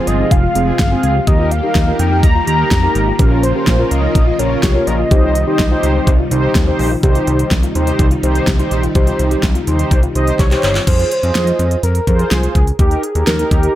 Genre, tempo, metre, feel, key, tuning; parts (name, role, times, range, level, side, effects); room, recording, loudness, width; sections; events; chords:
synth-pop; 125 BPM; 4/4; straight; A4 = 440 Hz
warm velvety synth lead; melody; 0.0-6.6, 10.2-13.8 s; G4 to Bb5; -19 LUFS; equal; chorus, tape echo, plate reverb
mellow synth brass; accompaniment; 0.0-13.8 s; C4 to Eb5; -20 LUFS; equal; chorus, plate reverb
string machine, violas; sustained chords; 0.0-10.8 s; C3 to G4; -22 LUFS; equal; ensemble chorus, plate reverb
soft round pluck; arpeggios; 0.0-10.8 s; Eb4 to Ab4; -26 LUFS; left 6 dB; chorus, tape echo, plate reverb
fat analog bass; bass; 0.1-13.7 s; F1 to F2; -17 LUFS; equal
pop drum kit; drums; 0.1-13.7 s; crash cymbal, handclaps, hi-hat, kick drum, snare drum; -15 LUFS; equal; gated reverb
light reverb; -12 LUFS; side -13 dB against mid
0.0-7.0 A section; 7.0-10.9 B section; 10.9-13.8 C section
drum fill 10.4-10.9
0.0 Fm; 1.3 Eb; 3.2 Bbm; 7.0 Cm; 10.9 Fm; 12.8 Eb